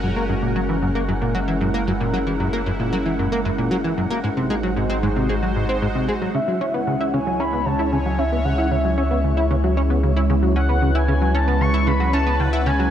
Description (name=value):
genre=ambient, sequencer-driven space music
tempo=114 BPM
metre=4/4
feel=straight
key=C# minor from 6.3 s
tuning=A4 = 440 Hz
part: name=sweeping resonant pad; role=sustained chords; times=0.0-12.9 s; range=G#3 to C#5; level=-24 LUFS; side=equal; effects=chorus, shimmer reverb
part: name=plucky analog bass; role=riff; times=0.0-12.9 s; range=F#2 to E4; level=-23 LUFS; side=equal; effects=analog chorus, shimmer reverb, tape echo
part: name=warm sub bass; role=bass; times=0.0-12.9 s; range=F#1 to C#2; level=-23 LUFS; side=equal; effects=none
part: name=wind-like tuned noise texture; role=texture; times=0.0-12.9 s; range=C#5 to F#5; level=-35 LUFS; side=right 1 dB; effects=built-in reverb, shimmer reverb
part: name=expressive synth lead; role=melody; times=6.3-12.9 s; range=E5 to C#6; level=-25 LUFS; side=equal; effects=analog chorus, shimmer reverb, tape echo
room=moderate plate reverb, RT60 3.2 s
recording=none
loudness=-18 LUFS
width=side -10 dB against mid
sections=0.0-6.3 A section; 6.3-12.9 B section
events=none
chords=0.0 F#add9; 4.2 G#7; 6.3 C#m